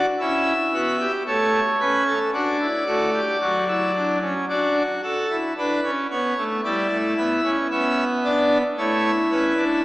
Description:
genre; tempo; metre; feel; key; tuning
classical, baroque-style 4-part fugue for pipe organ; 56 BPM; 4/4; straight; D major from 4.5 s; A4 = 440 Hz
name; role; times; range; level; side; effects
pipe organ, full organ; solo; 0.0-9.8 s; F#3 to E5; -19 LUFS; equal; none
room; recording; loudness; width
wet church reverb, RT60 3.5 s; small speaker sound; -19 LUFS; side -18 dB against mid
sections
0.0-4.5 A section; 4.5-9.8 B section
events
none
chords
0.2 A; 2.3 D; 6.6 Em7/G; 8.8 A

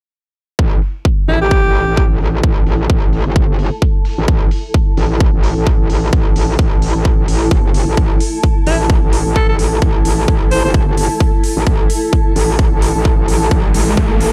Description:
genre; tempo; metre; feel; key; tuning
bass house; 130 BPM; 4/4; swing 57% on 16ths; unclear; A4 = 439 Hz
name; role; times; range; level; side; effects
metallic wobble bass; bass; 0.6-14.3 s; G1 to A1; -19 LUFS; equal; chorus, tube saturation, sidechain pumping
electronic kick drum; drums; 0.6-14.1 s; none; -16 LUFS; equal; none
granular cloud pad; texture; 2.1-14.3 s; E4 to A5; -24 LUFS; equal; built-in reverb, sidechain pumping
electronic hi-hat; drums; 0.8-14.3 s; none; -30 LUFS; equal; low-pass filter on hats
raspy alto saxophone; melody; 1.3-2.1, 8.7-10.7 s; E4 to C5; -20 LUFS; equal; delay
riser; sound effects; 12.7-14.3 s; none; -25 LUFS; equal; none
room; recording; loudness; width
little or no reverb; none; -14 LUFS; mono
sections
0.6-14.3 A section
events
riser 12.7-14.3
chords
0.6 A5

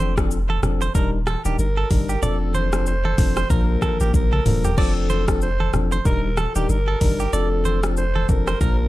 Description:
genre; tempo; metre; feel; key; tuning
afrobeats; 94 BPM; 4/4; swing 58% on 16ths; F mixolydian; A4 = 440 Hz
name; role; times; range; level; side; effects
tine electric piano; accompaniment; 0.0-8.9 s; F3 to Bb4; -27 LUFS; left 5 dB; none
direct-recorded clean electric guitar; riff; 0.0-8.8 s; G4 to D5; -29 LUFS; right 6 dB; warbly pitch drift, ping-pong delay
punchy sub bass; bass; 0.0-8.9 s; Eb1 to Bb1; -22 LUFS; equal; none
afro-pop drum kit; drums; 0.2-8.8 s; crash cymbal, hi-hat, kick drum, rim click, shaker, toms; -22 LUFS; equal; none
congas; percussion; 0.5-8.8 s; none; -29 LUFS; right 1 dB; none
breathy alto saxophone; melody; 1.6-8.9 s; G4 to C5; -27 LUFS; right 1 dB; ping-pong delay
room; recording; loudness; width
digital ambience; lossy compression artefacts; -18 LUFS; side -16 dB against mid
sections
0.0-8.9 A section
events
drum fill 4.1-4.8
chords
0.0 F6; 0.9 Ebmaj7; 2.2 F6; 3.5 Bbmaj7; 4.8 F6; 6.1 Ebmaj7; 7.3 F6

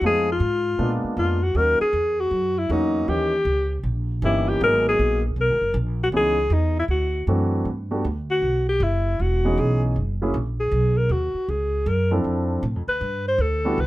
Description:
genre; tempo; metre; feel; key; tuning
jazz, small-group swing and bop; 157 BPM; 4/4; swing 65% on 8ths; unclear; A4 = 444 Hz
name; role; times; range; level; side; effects
mellow alto saxophone; melody; 0.0-13.9 s; D#4 to C5; -22 LUFS; left 1 dB; plate reverb
dark concert grand piano; accompaniment; 0.0-13.8 s; E3 to A4; -25 LUFS; right 1 dB; none
upright bass; bass; 0.0-13.9 s; E1 to A#2; -24 LUFS; equal; none
room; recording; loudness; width
light reverb; none; -20 LUFS; side -17 dB against mid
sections
0.0-7.7 A section; 7.7-13.9 B section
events
alto saxophone solo 7.7-13.9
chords
0.0 Fm7b5; 0.8 A#7b9; 1.6 D#m7; 3.1 D#7b9; 4.6 G#m9; 6.1 C#m9; 6.9 D7; 7.7 Gmaj7; 9.2 C#m9; 10.0 F#9; 10.7 Badd9; 12.2 Dm9; 13.0 Gadd9

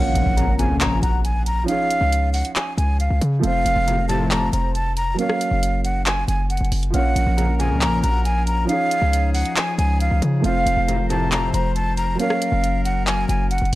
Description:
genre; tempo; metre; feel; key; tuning
hip hop, trap; 137 BPM; 4/4; half-time; Bb minor; A4 = 440 Hz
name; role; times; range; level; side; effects
breathy mellow silver concert flute; melody; 0.0-13.7 s; F5 to Bb5; -23 LUFS; equal; none
warm velvety synth lead; second line; 0.0-11.7 s; C5 to Bb5; -32 LUFS; left 2 dB; chorus, tremolo, tape echo
felt-muted upright piano; accompaniment; 0.0-13.8 s; F3 to Db5; -28 LUFS; right 4 dB; none
hard-hitting 808-style bass; bass; 0.0-13.8 s; F1 to Db3; -20 LUFS; equal; none
impact; sound effects; 0.0-1.7 s; none; -26 LUFS; equal; none
trap drum kit; drums; 0.2-13.8 s; handclaps, hi-hat, rim click; -25 LUFS; equal; none
sync-sweep polysynth; stabs; 0.4-1.0, 3.9-4.5, 7.4-8.0, 10.9-11.5 s; F2 to Db3; -25 LUFS; left 2 dB; chorus
warm brass ensemble; sustained chords; 6.9-13.8 s; F3 to C5; -28 LUFS; left 4 dB; none
room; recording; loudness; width
digital ambience; dark, warm production; -18 LUFS; side -17 dB against mid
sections
0.0-13.8 A section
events
impact 0.0-1.7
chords
0.0 Bbm; 1.7 Dbadd9; 3.4 F; 5.2 Gb; 6.9 Bbm; 8.7 Dbadd9; 10.4 F; 12.2 Gb

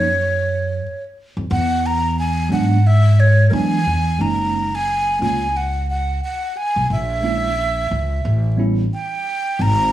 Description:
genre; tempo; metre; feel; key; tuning
hip hop; 89 BPM; 4/4; swing 59% on 16ths; unclear; A4 = 440 Hz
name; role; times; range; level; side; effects
breathy mellow silver concert flute; melody; 0.0-9.9 s; A#4 to A#5; -20 LUFS; right 1 dB; slapback echo, plate reverb
mellow tine electric piano; accompaniment; 0.0-8.8 s; F#3 to E#4; -22 LUFS; right 3 dB; medium stereo tremolo, plate reverb
upright bass; bass; 0.0-9.9 s; F#1 to E3; -18 LUFS; equal; none
room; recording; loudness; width
light reverb; vinyl crackle, studio ambience; -16 LUFS; side -13 dB against mid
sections
0.0-4.2 A section; 4.2-9.9 B section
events
flute solo 0.0-4.2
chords
0.0 Bsus2 (rootless); 1.5 E9; 4.2 F#69; 6.9 A#m7b5; 8.2 A9

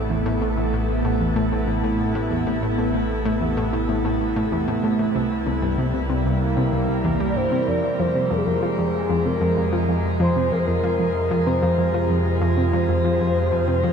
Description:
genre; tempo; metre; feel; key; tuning
ambient, sequencer-driven space music; 95 BPM; 4/4; straight; F minor from 7.7 s; A4 = 436 Hz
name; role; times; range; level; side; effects
evolving wavetable pad; sustained chords; 0.0-13.9 s; C3 to Bb4; -23 LUFS; right 1 dB; chorus, built-in reverb
fat analog bass; bass; 0.0-13.9 s; A1 to F2; -26 LUFS; equal; none
analog pluck; riff; 0.1-13.9 s; C2 to G3; -24 LUFS; left 1 dB; chorus, ping-pong delay
expressive synth lead; melody; 7.3-13.9 s; Ab4 to D5; -24 LUFS; equal; chorus, cassette tape, ping-pong delay
room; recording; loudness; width
wet shimmer reverb, RT60 8.7 s; dark, warm production; -19 LUFS; side -6 dB against mid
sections
0.0-7.7 A section; 7.7-13.9 B section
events
none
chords
0.0 Amadd9; 5.2 C7; 7.7 Fm

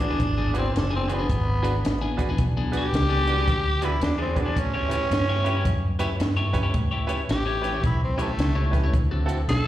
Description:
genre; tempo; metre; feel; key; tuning
electric blues shuffle; 110 BPM; 4/4; swing 63% on 8ths; A mixolydian; A4 = 440 Hz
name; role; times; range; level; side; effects
growling tenor saxophone; melody; 0.0-9.7 s; A3 to A4; -27 LUFS; equal; slapback echo
bright upright piano; accompaniment; 0.0-9.4 s; C4 to B4; -33 LUFS; right 4 dB; slapback echo
electric guitar at the edge of break-up; riff; 0.0-9.4 s; D3 to C#5; -31 LUFS; left 4 dB; phaser, slapback echo
vintage muted fingered electric bass; bass; 0.0-9.7 s; F#1 to A2; -25 LUFS; equal; none
compact cocktail drum kit; drums; 0.0-9.7 s; hi-hat, kick drum, snare drum; -27 LUFS; equal; none
room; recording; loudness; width
light reverb, small room ambience; live gig heard through the venue's PA, recital hall reverb; -21 LUFS; side -13 dB against mid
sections
0.0-6.7 A section; 6.7-9.7 A section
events
tenor saxophone solo 0.0-9.7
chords
0.0 E7; 4.6 A7; 8.9 D7

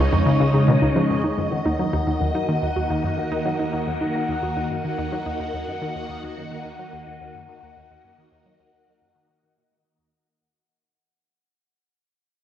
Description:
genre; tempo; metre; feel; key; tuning
ambient, sequencer-driven space music; 108 BPM; 4/4; straight; Eb minor; A4 = 440 Hz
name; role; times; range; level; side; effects
phased string machine; sustained chords; 0.0-10.1 s; Db3 to Eb5; -24 LUFS; equal; ensemble chorus, phaser
warbly dusty pluck; arpeggios; 0.0-5.5 s; Eb3 to Gb4; -28 LUFS; equal; chorus, auto-pan, cassette tape, ping-pong delay
analog pluck; riff; 0.0-10.1 s; Db2 to Gb3; -24 LUFS; equal; chorus, ping-pong delay
bubbling stepped-filter texture; texture; 0.0-10.1 s; Db5 to Gb5; -31 LUFS; left 2 dB; chorus, built-in reverb
room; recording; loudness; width
moderate plate reverb, RT60 2.9 s; worn, warbling old tape, cassette tape, warbly pitch drift; -20 LUFS; side -10 dB against mid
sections
0.0-1.2 A section; 1.2-10.1 B section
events
fade-out on synth arpeggio sound 1.2-10.1; fade-out 1.2-10.1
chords
0.0 Db; 1.2 Ebm

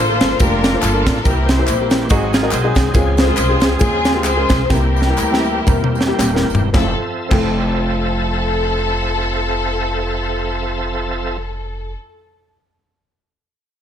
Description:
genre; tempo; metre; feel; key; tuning
uptempo gospel; 105-141 BPM; 4/4; swing 56% on 8ths; F major; A4 = 437 Hz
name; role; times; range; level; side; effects
rich studio string section; melody; 0.0-11.9 s; C4 to C5; -21 LUFS; left 3 dB; none
warm upright piano; accompaniment; 0.0-12.0 s; F2 to C5; -23 LUFS; left 3 dB; none
bright tonewheel organ; sustained chords; 0.0-11.4 s; Db3 to E5; -23 LUFS; right 2 dB; slow rotary speaker, overdrive, chorus vibrato
upright bass; bass; 0.0-11.9 s; Eb1 to E2; -20 LUFS; equal; none
crisp fusion drum kit; drums; 0.2-7.5 s; crash cymbal, kick drum, ride cymbal, snare drum, toms; -17 LUFS; right 1 dB; none
tambourine and handclaps; percussion; 0.2-7.5 s; none; -28 LUFS; left 1 dB; none
clean electric guitar; second line; 2.1-2.9 s; Eb4 to C5; -25 LUFS; right 8 dB; none
room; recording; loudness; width
light reverb; none; -14 LUFS; side -9 dB against mid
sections
0.0-6.7 A section; 6.7-11.3 B section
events
slowing down 2.9-6.7; drum fill 4.7-6.7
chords
0.0 Bbmaj7; 1.2 C7; 2.1 Ab7; 2.9 Dbmaj7; 4.7 C7; 6.7 Fmaj7

